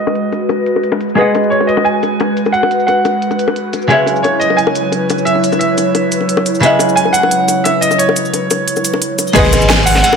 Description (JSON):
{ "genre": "liquid drum and bass", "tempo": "176 BPM", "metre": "4/4", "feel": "straight", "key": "C# minor", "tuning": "A4 = 440 Hz", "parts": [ { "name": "bright grand piano", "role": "melody", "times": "0.0-10.2 s", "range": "C#5 to G#5", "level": "-16 LUFS", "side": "right 2 dB", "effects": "dub echo" }, { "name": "archtop guitar, miked and amplified", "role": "accompaniment", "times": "0.0-10.2 s", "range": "C#3 to F#5", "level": "-17 LUFS", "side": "equal", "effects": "low-pass filter, dub echo" }, { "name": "airy breathy pad", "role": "sustained chords", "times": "0.0-9.3 s", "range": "F#3 to C#5", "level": "-17 LUFS", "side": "equal", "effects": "chorus, sidechain pumping" }, { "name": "pop drum kit", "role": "drums", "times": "0.1-10.1 s", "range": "cabasa, crash cymbal, hi-hat, snare drum", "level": "-20 LUFS", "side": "right 1 dB", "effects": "studio ambience" }, { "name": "bongos", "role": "percussion", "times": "0.1-10.2 s", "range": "none", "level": "-20 LUFS", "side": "left 6 dB", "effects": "none" }, { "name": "sub bass with octave", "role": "bass", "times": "9.4-10.0 s", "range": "G#1", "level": "-16 LUFS", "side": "equal", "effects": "none" }, { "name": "crunchy breakbeat drum kit", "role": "drums", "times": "9.4-10.1 s", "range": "ride cymbal, snare drum", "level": "-17 LUFS", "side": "equal", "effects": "high-pass filter on cymbals, studio ambience, high-pass filter on snare, high-pass filter on room" }, { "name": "electronic kick drum", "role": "drums", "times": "9.4 s", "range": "none", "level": "-16 LUFS", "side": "equal", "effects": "studio ambience" }, { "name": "impact", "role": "sound effects", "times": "9.4-10.2 s", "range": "none", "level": "-18 LUFS", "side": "equal", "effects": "none" } ], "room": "moderate plate reverb, RT60 1.5 s, studio reverb", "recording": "low-pass filter", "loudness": "-11 LUFS", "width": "side -6 dB against mid", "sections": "0.0-9.4 A section", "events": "filter sweep on hollow-body jazz guitar 0.0-9.4; filter sweep 0.0-9.4; impact 9.4-10.2", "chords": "0.0 G#m7; 3.9 C#m11; 9.4 G#m7" }